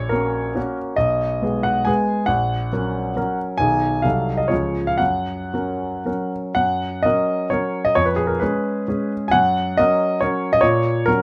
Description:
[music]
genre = classical, romantic triple-time dance for piano with dotted rhythms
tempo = 107-146 BPM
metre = 3/4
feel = rubato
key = F# major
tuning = A4 = 440 Hz
[part]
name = clear grand piano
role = solo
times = 0.0-11.2 s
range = A#1 to G#5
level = -20 LUFS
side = equal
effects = none
[sound]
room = light reverb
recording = close, detailed microphones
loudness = -20 LUFS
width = mono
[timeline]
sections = 0.0-6.6 A section; 6.6-11.2 A section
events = none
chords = 0.0 F#/A#; 1.0 G#m/B; 2.3 F#/A#; 3.6 G#m/B; 4.0 Cdim7; 4.5 C#; 5.0 F#; 8.0 C#7/E#; 9.3 F#; 10.6 F#/A#

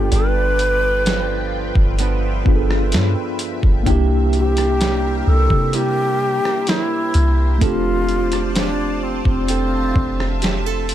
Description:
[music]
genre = contemporary R&B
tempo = 64 BPM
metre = 4/4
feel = straight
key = unclear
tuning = A4 = 440 Hz
[part]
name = long shakuhachi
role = melody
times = 0.0-10.9 s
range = C4 to B4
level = -21 LUFS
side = equal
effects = ping-pong delay
[part]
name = mellow tine electric piano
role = accompaniment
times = 0.0-10.9 s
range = A3 to A4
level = -24 LUFS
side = left 1 dB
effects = medium stereo tremolo
[part]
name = lush unison pad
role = sustained chords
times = 0.0-10.9 s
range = F4 to A5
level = -29 LUFS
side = left 1 dB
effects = chorus, phaser, sidechain pumping
[part]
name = nylon-string guitar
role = arpeggios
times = 0.0-10.9 s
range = G2 to A4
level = -28 LUFS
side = right 10 dB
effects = ping-pong delay
[part]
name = soft 808-style bass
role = bass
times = 0.0-10.9 s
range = F1 to C3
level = -19 LUFS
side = equal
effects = none
[part]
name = dusty soul sampler-style drum kit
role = drums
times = 0.1-10.9 s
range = hi-hat, kick drum, rim click, snare drum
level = -20 LUFS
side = equal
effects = overdrive
[sound]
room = little or no reverb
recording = none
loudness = -15 LUFS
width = side -12 dB against mid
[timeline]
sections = 0.0-10.9 A section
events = none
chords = 0.0 G7; 3.9 C7; 7.6 F6

